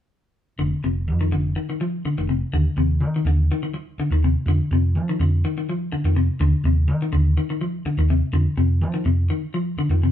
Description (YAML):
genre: afrobeat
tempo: 124 BPM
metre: 4/4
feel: straight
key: unclear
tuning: A4 = 440 Hz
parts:
  - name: clean electric guitar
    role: arpeggios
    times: 0.6-10.1 s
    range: C3 to F3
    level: -24 LUFS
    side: left 3 dB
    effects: none
  - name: hollow-body short-scale fingered electric bass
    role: bass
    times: 0.6-10.1 s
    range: F1 to F3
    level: -19 LUFS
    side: right 1 dB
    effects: none
room: light reverb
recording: band playing live in one room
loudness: -19 LUFS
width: side -11 dB against mid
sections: 0.6-10.1 A section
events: none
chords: 0.6 F5; 2.5 Cmadd9/Eb; 4.5 F5; 6.4 Cmadd9/Eb; 8.3 F5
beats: | 0.59 1.08 1.56 2.05 | 2.53 3.02 3.50 3.98 | 4.47 4.95 5.43 5.92 | 6.40 6.88 7.37 7.85 | 8.33 8.81 9.29 9.78